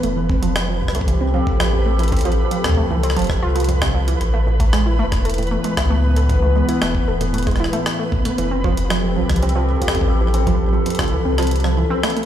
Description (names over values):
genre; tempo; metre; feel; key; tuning
IDM; 115 BPM; 4/4; straight; unclear; A4 = 445 Hz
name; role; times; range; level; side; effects
hollow soft pad; sustained chords; 0.0-12.3 s; A2 to B4; -23 LUFS; left 2 dB; chorus, sidechain pumping
warbly dusty pluck; arpeggios; 0.0-12.3 s; F2 to F4; -23 LUFS; right 4 dB; chorus, tape echo
warm sub bass; bass; 0.0-11.8 s; E1 to C#2; -19 LUFS; equal; none
jungle sampler-style drum kit; drums; 0.0-12.3 s; hi-hat, rim click; -26 LUFS; equal; studio ambience, digital delay
flickering grainy texture; texture; 0.0-12.3 s; B4; -30 LUFS; right 1 dB; built-in reverb
electronic kick drum; drums; 0.3-11.1 s; none; -21 LUFS; equal; studio ambience
room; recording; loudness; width
light reverb; played on a big sound system in a bare room, large studio reverb; -16 LUFS; side -10 dB against mid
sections
0.0-12.3 A section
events
kick drops out 11.5-12.3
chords
0.0 Fmaj7; 4.2 Asus2; 8.4 Fmaj7